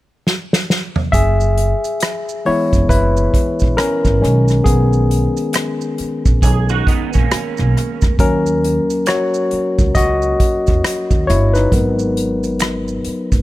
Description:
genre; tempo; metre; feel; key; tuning
R&B, neo-soul; 68 BPM; 4/4; swing 60% on 16ths; unclear; A4 = 441 Hz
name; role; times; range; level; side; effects
unplugged drum kit; drums; 0.3-13.4 s; hi-hat, kick drum, rim click, snare drum, toms; -16 LUFS; right 1 dB; none
barky tine electric piano; accompaniment; 1.1-13.4 s; D#3 to E5; -17 LUFS; left 2 dB; overdrive
upright bass; bass; 1.1-13.4 s; F#1 to E2; -17 LUFS; right 1 dB; none
maracas and finger snaps; percussion; 1.1-13.4 s; none; -29 LUFS; right 9 dB; none
electric guitar through a small old amp; second line; 6.4-8.2 s; A#3 to G#4; -22 LUFS; right 9 dB; ensemble chorus
room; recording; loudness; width
small room ambience; none; -13 LUFS; side -16 dB against mid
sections
0.0-1.1 A section; 1.1-13.4 B section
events
drum fill 0.2-1.1; tine electric piano solo 1.1-13.4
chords
0.0 N.C.; 1.1 F#9sus4; 4.2 B69; 8.2 D#m7; 11.7 G#m9

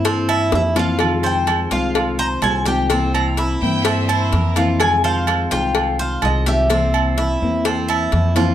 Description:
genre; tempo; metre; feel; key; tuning
latin, Cuban son and guajira; 126 BPM; 4/4; straight; F minor; A4 = 440 Hz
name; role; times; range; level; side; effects
fingerpicked steel-string acoustic guitar; accompaniment; 0.0-8.5 s; C3 to F4; -22 LUFS; left 3 dB; none
Cuban tres; arpeggios; 0.0-8.5 s; C4 to C5; -24 LUFS; right 2 dB; none
upright bass; bass; 0.0-8.5 s; C2 to G2; -21 LUFS; equal; none
agogo bells and timbales; percussion; 0.1-8.5 s; none; -23 LUFS; right 8 dB; none
cowbell and bongos; percussion; 0.1-8.5 s; none; -24 LUFS; left 5 dB; none
Cuban tres; melody; 0.6-8.3 s; Eb5 to Bb5; -22 LUFS; left 2 dB; none
clear studio violin section; second line; 3.6-4.7 s; Bb4 to G5; -26 LUFS; right 1 dB; none
room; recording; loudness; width
moderate large studio reverb, RT60 0.8 s; none; -15 LUFS; side -11 dB against mid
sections
0.0-8.5 A section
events
drum fill 0.5-1.0, 8.4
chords
0.0 C7; 1.0 Fm7; 2.9 C7; 4.8 Fm7; 6.7 C7

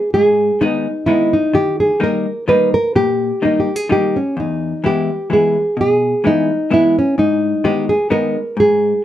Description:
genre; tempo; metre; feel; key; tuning
musette waltz; 128 BPM; 3/4; straight; G# harmonic minor; A4 = 439 Hz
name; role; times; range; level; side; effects
nylon-string guitar; melody; 0.0-9.0 s; C#4 to B4; -14 LUFS; right 1 dB; none
vintage hollow-body jazz guitar; accompaniment; 0.1-8.9 s; E2 to E4; -19 LUFS; left 3 dB; none
room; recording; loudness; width
moderate studio reverb, RT60 0.5 s; none; -13 LUFS; side -12 dB against mid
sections
0.0-9.0 A section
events
none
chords
0.0 G#m; 1.5 D#; 4.4 E; 7.2 G#m

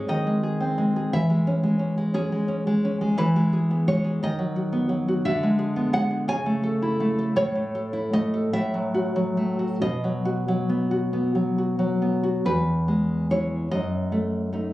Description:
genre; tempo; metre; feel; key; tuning
romantic piece for solo classical guitar; 45-60 BPM (dotted quarters); 6/8; rubato; C# minor, E major from 3.2 s; A4 = 440 Hz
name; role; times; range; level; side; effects
nylon-string guitar; solo; 0.0-14.7 s; E2 to G#5; -22 LUFS; equal; none
room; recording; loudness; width
light reverb; recorded on a phone in the room, club reverb, compression; -22 LUFS; side -16 dB against mid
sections
0.0-12.5 A section; 12.5-14.7 B section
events
none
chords
0.0 G#; 1.1 C#m/E; 3.2 E; 4.2 B/D#; 5.2 E7/D; 6.3 A/C#; 7.4 A; 8.5 F#m/A; 9.8 B; 12.5 E; 13.7 D#dim/F#

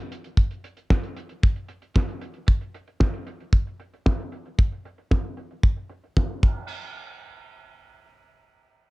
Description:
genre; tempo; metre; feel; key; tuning
italo disco; 114 BPM; 4/4; straight; none; none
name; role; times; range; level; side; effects
damped 70s drum kit; drums; 0.1-6.5 s; crash cymbal, hi-hat, snare drum; -30 LUFS; right 1 dB; low-pass filter on hats, small room ambience, low-pass filter on cymbals, low-pass filter on snare, low-pass filter on room
kick drum; drums; 0.4-6.5 s; none; -20 LUFS; equal; small room ambience
room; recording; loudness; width
little or no reverb; dark, warm production; -22 LUFS; side -22 dB against mid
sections
0.0-6.7 A section; 6.7-8.8 B section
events
filter sweep on drum 0.0-6.7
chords
none

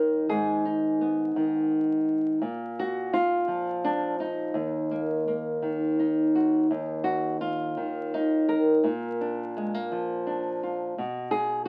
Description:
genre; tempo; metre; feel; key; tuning
folk, solo fingerstyle acoustic guitar; 84 BPM; 3/4; straight; unclear; A4 = 442 Hz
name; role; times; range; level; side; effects
nylon-string guitar; solo; 0.0-11.7 s; Eb2 to Bb4; -27 LUFS; equal; none
room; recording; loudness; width
moderate small room reverb, RT60 0.6 s; very old 78 rpm record, vinyl crackle; -27 LUFS; mono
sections
0.0-6.7 A section; 6.7-11.7 A section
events
none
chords
0.3 Abm; 2.4 Bb5; 4.6 Ebm; 6.7 N.C.; 8.8 Bb; 11.0 N.C.

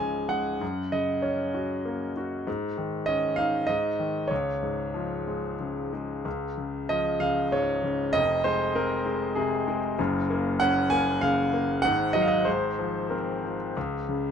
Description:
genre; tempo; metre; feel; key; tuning
classical, lyrical solo piano; 96 BPM; 3/4; rubato; Db major; A4 = 442 Hz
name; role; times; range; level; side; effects
clear grand piano; solo; 0.0-14.3 s; F1 to Ab5; -25 LUFS; equal; none
room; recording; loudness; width
light reverb; dark, warm production; -25 LUFS; side -7 dB against mid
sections
0.0-6.3 A section; 6.3-14.3 A section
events
none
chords
0.0 Db; 0.6 Gb; 2.5 Absus4; 3.7 Ab5; 4.3 Db; 8.1 Fm; 10.0 Gb; 11.8 Ebmadd11/Ab; 12.5 Ab6; 13.8 N.C.

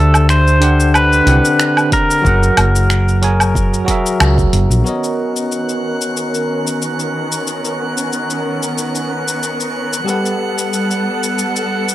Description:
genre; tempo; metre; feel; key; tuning
sunset chillout; 92 BPM; 4/4; swing 53% on 16ths; unclear; A4 = 441 Hz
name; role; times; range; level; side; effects
pedal steel guitar; melody; 0.0-4.2 s; A4 to C5; -16 LUFS; equal; tape echo
bell-like tine electric piano; accompaniment; 0.0-11.9 s; D3 to G#5; -19 LUFS; equal; auto-pan, analog delay
woody fretless electric bass; bass; 0.0-4.8 s; F#1 to D2; -13 LUFS; equal; none
dusty soul sampler-style drum kit; drums; 0.1-11.9 s; finger snaps, hi-hat, shaker, woodblock; -19 LUFS; equal; none
electronic kick drum; drums; 1.9-4.5 s; none; -18 LUFS; equal; overdrive
bright symphonic string section; sustained chords; 4.9-11.9 s; D#3 to F#5; -20 LUFS; equal; low-pass filter
drifting glass-harmonics texture; texture; 5.2-11.9 s; F#5 to F#6; -24 LUFS; right 3 dB; chorus, built-in reverb
room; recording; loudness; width
light reverb; dry, gritty hardware recording; -13 LUFS; side -14 dB against mid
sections
0.0-4.9 A section; 4.9-11.9 B section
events
band accent 4.2-4.5; filter sweep on string section 4.9-11.9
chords
0.0 D9sus4; 2.2 F#7; 4.9 Bmaj9; 10.1 Gmaj9

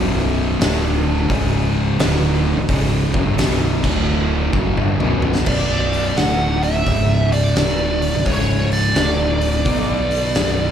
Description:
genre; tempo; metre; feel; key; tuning
stoner and doom metal; 86 BPM; 4/4; swing 65% on 8ths; B minor; A4 = 440 Hz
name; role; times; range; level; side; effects
fuzz guitar; riff; 0.0-5.5 s; B1 to F#3; -26 LUFS; right 1 dB; distortion
thick fuzz guitar; riff; 0.0-10.7 s; B1 to B3; -23 LUFS; left 10 dB; distortion
thick fuzz guitar; riff; 0.0-10.7 s; B1 to B3; -23 LUFS; right 8 dB; distortion
growling fingered electric bass; bass; 0.0-10.7 s; B0 to B1; -22 LUFS; equal; overdrive, tube saturation
oversized low-tuned drum kit; drums; 0.6-10.6 s; crash cymbal, hi-hat, kick drum, snare drum, toms; -21 LUFS; equal; none
fuzz lead guitar; melody; 5.5-10.7 s; C#5 to F#5; -21 LUFS; right 2 dB; wah, distortion, tape echo
room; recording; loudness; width
light reverb; live gig heard through the venue's PA, club reverb; -15 LUFS; side -9 dB against mid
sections
0.0-5.5 A section; 5.5-10.7 B section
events
drum fill 4.8-5.5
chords
0.0 B5; 0.6 D5; 1.3 C#5; 2.0 Bm; 3.7 D5; 4.4 Bm; 6.2 D5; 6.9 C#5; 7.6 Bm; 8.3 C#5; 9.0 D5; 9.7 Bm

